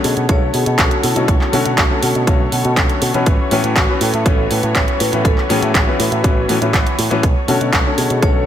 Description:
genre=nu-disco, nu disco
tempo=121 BPM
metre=4/4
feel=straight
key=B dorian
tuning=A4 = 444 Hz
part: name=vibraphone with medium mallets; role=melody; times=0.0-8.5 s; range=E4 to C#5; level=-24 LUFS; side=right 1 dB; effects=ping-pong delay
part: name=clear grand piano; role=accompaniment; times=0.0-8.5 s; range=D3 to F#4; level=-20 LUFS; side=left 4 dB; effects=sidechain pumping, tape echo
part: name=muted studio string section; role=sustained chords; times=0.0-8.5 s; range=A3 to C#5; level=-25 LUFS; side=left 1 dB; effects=vintage 12-bit sampler grit, sidechain pumping
part: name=picked electric bass with an envelope filter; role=bass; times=0.0-8.4 s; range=A1 to B2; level=-19 LUFS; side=right 1 dB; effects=none
part: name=house drum kit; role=drums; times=0.0-8.3 s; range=handclaps, hi-hat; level=-20 LUFS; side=right 1 dB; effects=overdrive
part: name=electronic kick drum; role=drums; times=0.3-8.3 s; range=none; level=-16 LUFS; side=right 1 dB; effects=overdrive
room=light reverb, small room reverb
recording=none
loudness=-13 LUFS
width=side -10 dB against mid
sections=0.0-8.5 A section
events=none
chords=0.0 Bm9; 3.3 A69; 7.2 Bm9

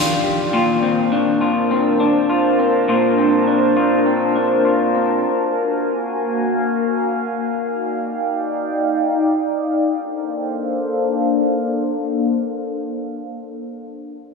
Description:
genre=dream pop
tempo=102 BPM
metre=4/4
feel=straight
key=Bb major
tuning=A4 = 440 Hz
part: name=warbly tape-like pad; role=sustained chords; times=0.0-13.1 s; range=Eb3 to A5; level=-18 LUFS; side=equal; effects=chorus, built-in reverb, phaser, low-pass filter
part: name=electric guitar through a small old amp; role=arpeggios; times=0.0-5.8 s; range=Bb2 to G4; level=-18 LUFS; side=left 3 dB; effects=wide subtle chorus, low-pass filter, digital delay
room=wet huge ambient reverb, RT60 4.9 s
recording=none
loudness=-16 LUFS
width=side -4 dB against mid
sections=0.0-9.9 A section; 9.9-12.3 B section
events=filter sweep 0.0-9.9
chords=0.0 Ebmaj9; 0.5 Bbmaj9; 5.2 Gbmaj9/Bb; 7.6 Ebmaj9; 9.9 Bbmaj9

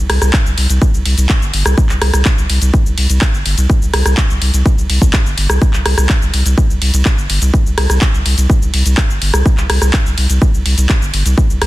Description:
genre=progressive house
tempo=125 BPM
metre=4/4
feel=straight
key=unclear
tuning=A4 = 435 Hz
part: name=saturated sub bass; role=bass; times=0.0-11.7 s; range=G1 to C2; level=-13 LUFS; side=equal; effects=sidechain pumping
part: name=house drum kit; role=drums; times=0.1-11.7 s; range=handclaps, hi-hat, ride cymbal, rim click, shaker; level=-18 LUFS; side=equal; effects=none
part: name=electronic kick drum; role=drums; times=0.3-11.5 s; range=none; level=-12 LUFS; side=equal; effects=none
room=little or no reverb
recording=dense, heavily limited modern master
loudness=-11 LUFS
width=side -17 dB against mid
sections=0.0-11.7 A section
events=none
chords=none

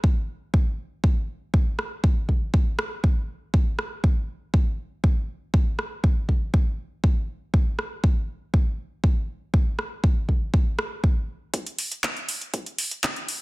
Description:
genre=house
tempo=120 BPM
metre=4/4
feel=straight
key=none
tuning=none
part: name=electronic kick drum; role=drums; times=0.0-13.1 s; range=none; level=-20 LUFS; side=equal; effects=high-pass filter on kick, studio reverb
part: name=deep house drum kit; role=drums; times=1.8-13.4 s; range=handclaps, hi-hat, rim click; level=-27 LUFS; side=equal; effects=soft clipping on snare, studio reverb
room=digital ambience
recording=dense, heavily limited modern master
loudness=-22 LUFS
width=side -22 dB against mid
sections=0.0-11.5 A section; 11.5-13.4 B section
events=build-up 11.5-13.4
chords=none

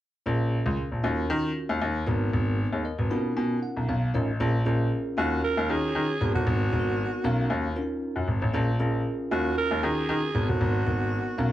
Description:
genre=early-eighties boogie funk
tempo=116 BPM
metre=4/4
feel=straight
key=Eb minor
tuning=A4 = 437 Hz
part: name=bell-like tine electric piano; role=accompaniment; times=0.3-11.5 s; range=Cb4 to B5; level=-31 LUFS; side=equal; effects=medium stereo tremolo
part: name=clear grand piano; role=bass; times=0.3-11.5 s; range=G1 to Eb3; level=-26 LUFS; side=equal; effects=none
part: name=breathy alto saxophone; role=melody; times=5.2-11.5 s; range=Gb4 to Bb4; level=-29 LUFS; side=right 2 dB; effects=none
room=light reverb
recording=band playing live in one room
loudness=-24 LUFS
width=side -13 dB against mid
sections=0.3-4.4 A section; 4.4-11.5 B section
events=tine electric piano fill 2.9-4.4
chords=0.3 Bbm7; 1.0 Ebm7; 2.1 Abm7; 3.1 Bmaj9#11; 4.4 Bbm7; 5.2 Ebm7; 6.2 Abm7; 7.2 Bmaj9#11; 8.5 Bbm7; 9.3 Ebm7; 10.3 Abm7

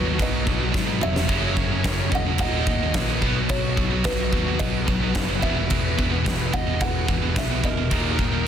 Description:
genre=heavy metal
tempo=109 BPM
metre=4/4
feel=straight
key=unclear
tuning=A4 = 440 Hz
part: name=kalimba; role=melody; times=0.0-8.5 s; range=B4 to Gb5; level=-32 LUFS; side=right 1 dB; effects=digital delay
part: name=high-gain lead guitar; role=second line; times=0.0-8.5 s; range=F#4 to Eb5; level=-34 LUFS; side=right 4 dB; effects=distortion
part: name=brassy analog pad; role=sustained chords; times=0.0-8.5 s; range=Eb3 to D#5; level=-37 LUFS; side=equal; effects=none
part: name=distorted electric guitar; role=riff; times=0.0-8.4 s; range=Eb2 to B3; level=-30 LUFS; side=left 11 dB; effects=distortion
part: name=heavy high-gain guitar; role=riff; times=0.0-8.4 s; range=Eb2 to B3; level=-29 LUFS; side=right 14 dB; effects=distortion
part: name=heavy high-gain guitar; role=riff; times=0.0-8.5 s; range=Eb2 to F#4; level=-29 LUFS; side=equal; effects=distortion
part: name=overdriven picked electric bass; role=bass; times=0.0-8.5 s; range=Eb1 to Ab2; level=-27 LUFS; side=equal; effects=none
part: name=big rock drum kit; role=drums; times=0.2-8.3 s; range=crash cymbal, kick drum, snare drum, toms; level=-25 LUFS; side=equal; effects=none
room=little or no reverb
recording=dense, heavily limited modern master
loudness=-20 LUFS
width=side -9 dB against mid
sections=0.0-8.5 A section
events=drum fill 0.7-1.3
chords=0.0 B; 1.3 Gb; 2.4 Ebm; 3.2 B; 5.4 E; 7.9 Ebm

